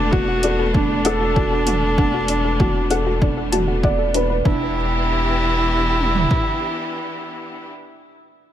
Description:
piano and strings electronica; 97 BPM; 4/4; straight; E minor; A4 = 440 Hz
dark viola; melody; 0.0-7.7 s; D4 to F#4; -23 LUFS; right 1 dB; ping-pong delay
clear studio string section; sustained chords; 0.0-7.7 s; E3 to G4; -26 LUFS; left 1 dB
felt-muted upright piano; riff; 0.0-8.5 s; D4 to D5; -22 LUFS; right 2 dB; ping-pong delay
warm sub bass; bass; 0.0-6.3 s; E1; -24 LUFS; equal; sidechain pumping
soft round pluck; arpeggios; 0.1-4.7 s; D4 to A5; -29 LUFS; left 6 dB; chorus, sidechain pumping, ping-pong delay
deep house drum kit; drums; 0.1-6.5 s; kick drum, toms; -20 LUFS; equal; overdrive
deep house drum kit; drums; 0.4-4.3 s; hi-hat, toms; -27 LUFS; right 1 dB; overdrive
light reverb, small room reverb; -16 LUFS; side -11 dB against mid
0.0-4.5 A section; 4.5-6.9 B section
drop 0.0-4.5
0.0 Bm7/E; 4.5 Em7

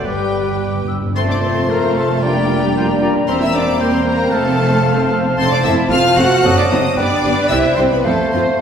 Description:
quick classical-period movement for symphony orchestra; 113 BPM; 2/4; rubato; F major; A4 = 440 Hz
clear oboe; second line; 0.0-8.6 s; B4 to A5; -26 LUFS; equal
hollow concert flute; second line; 0.0-8.6 s; F5 to E6; -26 LUFS; left 3 dB
mellow clarinet; second line; 0.0-8.6 s; B4 to D5; -25 LUFS; right 1 dB
warm studio violin section; second line; 0.0-8.6 s; G4 to F#5; -22 LUFS; left 2 dB
rich studio viola section; accompaniment; 0.0-8.4 s; A3 to C5; -23 LUFS; equal
warm bassoon; accompaniment; 0.0-8.6 s; F3 to A3; -23 LUFS; equal
mellow French horn section; sustained chords; 0.0-8.4 s; F3 to F4; -22 LUFS; left 2 dB
rich studio double bass section; bass; 0.0-8.4 s; E1 to F2; -21 LUFS; right 2 dB
warm studio cello section; bass; 0.0-8.4 s; G2 to F#4; -22 LUFS; right 3 dB
rich studio violin section; melody; 0.1-8.4 s; G5 to F#6; -24 LUFS; left 3 dB
timpani; percussion; 0.1-1.1 s; G2; -24 LUFS; equal
wet scoring stage reverb, RT60 1.8 s; heard from further back in the room; -13 LUFS; side -7 dB against mid
0.0-1.2 A section; 1.2-8.6 B section
timpani fill 0.1-1.2
0.1 G; 1.2 F; 2.2 Gm7/F; 3.3 C7/E; 4.3 F; 6.4 F#dim7; 7.0 G; 7.5 C; 8.0 F

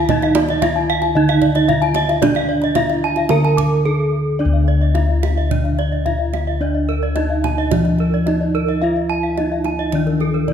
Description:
Balinese gamelan; 109 BPM; 4/4; straight; D pelog; A4 = 440 Hz
gamelan-type bronze metallophone; melody; 0.0-10.5 s; D4 to Bb4-40c; -22 LUFS; right 3 dB
gamelan-type bronze metallophone; arpeggios; 0.0-10.5 s; Bb4-40c to D6; -23 LUFS; left 7 dB; tape echo
gamelan-type bossed gongs; bass; 0.0-10.5 s; D2 to E4+50c; -18 LUFS; left 1 dB
kendang; percussion; 0.1-10.5 s; -25 LUFS; right 8 dB
gamelan-type bronze metallophone; arpeggios; 0.2-10.5 s; A4-45c to A5-45c; -24 LUFS; right 6 dB
moderate recital hall reverb, RT60 1.8 s; -15 LUFS; side -8 dB against mid
0.0-4.4 A section; 4.4-10.5 B section

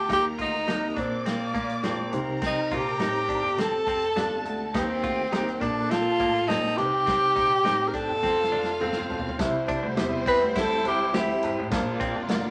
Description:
uptempo 1960s-style soul; 103 BPM; 4/4; straight; Bb major, C major from 9.4 s; A4 = 441 Hz
breathy tenor saxophone; melody; 0.0-11.6 s; Bb3 to B4; -27 LUFS; equal
warm studio string section; second line; 0.0-12.5 s; G3 to D6; -36 LUFS; equal
direct-recorded clean electric guitar; riff; 0.0-12.2 s; Bb3 to G4; -37 LUFS; equal
clear grand piano; bass; 0.0-12.5 s; F1 to Bb2; -37 LUFS; equal
reed electric piano; accompaniment; 0.1-12.5 s; Bb2 to F5; -35 LUFS; equal; fast tremolo
natural country drum kit; drums; 0.1-12.4 s; hi-hat, kick drum, snare drum, toms; -36 LUFS; equal
congas; percussion; 0.1-12.4 s; -44 LUFS; equal
mellow electric guitar; stabs; 0.7-12.4 s; F4 to F5; -38 LUFS; equal
moderate studio reverb, RT60 0.8 s; vinyl crackle; -26 LUFS; mono
0.0-9.4 A section; 9.4-12.5 B section
drum fill 8.2-9.4
0.1 Eb; 1.0 Bb; 2.1 Cm; 3.6 Fadd9; 4.7 Eb; 5.6 Bb; 6.8 Cm; 8.2 F; 9.4 C; 11.7 Bb

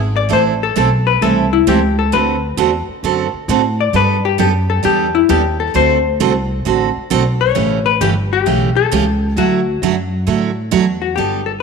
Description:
country, western swing; 132 BPM; 4/4; swing 67% on 8ths; A4 = 440 Hz
upright bass; bass; 0.0-11.6 s; G1 to A2; -18 LUFS; equal
vintage hollow-body jazz guitar; melody; 0.2-11.6 s; E4 to D5; -16 LUFS; left 10 dB
picked steel-string acoustic guitar; accompaniment; 0.3-11.4 s; C#3 to A4; -17 LUFS; right 10 dB
moderate echo chamber reverb, RT60 2.0 s, studio reverb; 1960s-style stereo with parts hard left and right; -13 LUFS; side -5 dB against mid
0.0-11.2 A section
0.3 Am; 2.1 D7; 3.9 Gadd9; 5.7 D7; 7.6 A7; 9.4 Dadd9

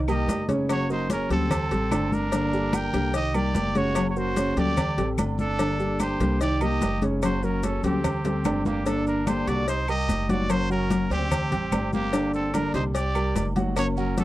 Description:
latin, Cuban son and guajira; 147 BPM; 4/4; straight; A4 = 440 Hz
warm concert grand piano; arpeggios; 0.0-14.2 s; C#3 to G5; -29 LUFS; right 1 dB
upright bass; bass; 0.0-14.2 s; F#1 to D2; -29 LUFS; equal
trumpet with straight mute; melody; 0.1-14.2 s; G4 to G5; -30 LUFS; equal
growling trumpet; second line; 0.1-14.2 s; Bb3 to Bb4; -35 LUFS; right 7 dB
fingerpicked steel-string acoustic guitar; accompaniment; 0.1-14.2 s; C#3 to A4; -29 LUFS; left 3 dB
agogo bells and timbales; percussion; 0.1-14.2 s; -36 LUFS; right 6 dB
claves; percussion; 0.1-14.0 s; -42 LUFS; left 9 dB
congas; percussion; 0.1-14.2 s; -30 LUFS; left 1 dB
maracas; percussion; 0.1-14.2 s; -43 LUFS; left 7 dB
cowbell; percussion; 0.3-14.2 s; -34 LUFS; left 5 dB
light reverb; dry, close 1970s-style studio recording; -22 LUFS; side -15 dB against mid
0.0-8.9 A section; 8.9-14.2 B section
drum fill 8.0-8.9
0.0 Cm7; 0.7 F#; 1.5 D7sus4; 2.3 Gmadd9; 3.1 Cm7; 4.0 F#; 4.8 D7sus4; 5.6 Gmadd9; 6.4 Cm7; 7.2 F#; 8.0 D7sus4; 8.9 Gmadd9; 9.7 Cm7; 10.5 F#; 11.3 D7sus4; 12.1 Gmadd9; 12.9 Cm7

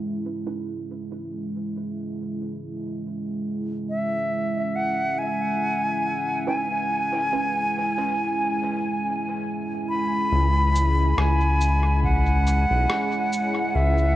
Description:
ambient dub; 70 BPM; 4/4; swing 56% on 16ths; C# minor; A4 = 441 Hz
deep dark ambient pad; sustained chords; 0.0-14.2 s; G#3 to E5; -28 LUFS; right 1 dB; chorus, built-in reverb, cassette tape
filtered dub chord stab; stabs; 0.5-0.7, 6.5-7.5 s; C#4 to B4; -34 LUFS; right 6 dB; lush chorus, cassette tape, dub echo
bright reedy concert flute; melody; 3.9-14.2 s; E5 to B5; -24 LUFS; equal; dub echo
round analog bass; bass; 10.3-14.2 s; B1 to C#2; -20 LUFS; left 1 dB
electronic cabasa and rim click; drums; 10.8-13.5 s; -32 LUFS; left 1 dB; cassette tape, dub echo
electronic kick drum; drums; 12.0-12.2 s; -26 LUFS; left 1 dB; cassette tape
light reverb; home recording on cassette; -22 LUFS; side -14 dB against mid
0.0-10.3 A section; 10.3-14.2 B section
filter sweep on ambient pad 0.0-10.3; filter sweep on synth stab 0.0-10.3
0.0 C#m7

